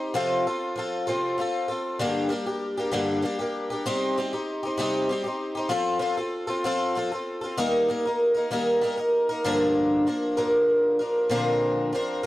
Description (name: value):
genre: rock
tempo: 65 BPM (dotted quarters)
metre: 6/8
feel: straight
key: unclear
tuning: A4 = 445 Hz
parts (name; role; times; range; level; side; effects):
- picked twelve-string acoustic guitar; solo; 0.0-12.3 s; G2 to Bb4; -23 LUFS; equal; none
room: little or no reverb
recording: dry, close 1970s-style studio recording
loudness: -23 LUFS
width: side -16 dB against mid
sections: 0.0-2.0 A section; 2.0-9.4 B section; 9.4-12.3 C section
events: none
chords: 0.2 F/C; 2.0 Gm; 3.9 Cm; 5.7 F; 7.6 Eb; 9.4 Gm7; 11.3 Bbadd9